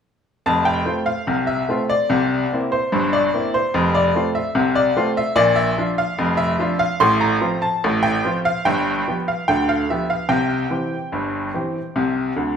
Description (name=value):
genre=ragtime piano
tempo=73 BPM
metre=2/4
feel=straight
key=F major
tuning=A4 = 439 Hz
part: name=bright upright piano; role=solo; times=0.5-12.6 s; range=F1 to C6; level=-17 LUFS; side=equal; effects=none
room=wet large studio reverb, RT60 1.2 s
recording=band playing live in one room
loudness=-17 LUFS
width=side -7 dB against mid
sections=0.5-12.6 A section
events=upright piano fill 12.4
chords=0.5 F; 2.1 C7; 3.7 F; 5.4 Bb; 7.0 F/A; 8.7 G7; 10.3 C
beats=| 0.45 1.28 | 2.10 2.92 | 3.74 4.56 | 5.38 6.20 | 7.02 7.83 | 8.65 9.48 | 10.31 11.13 | 11.96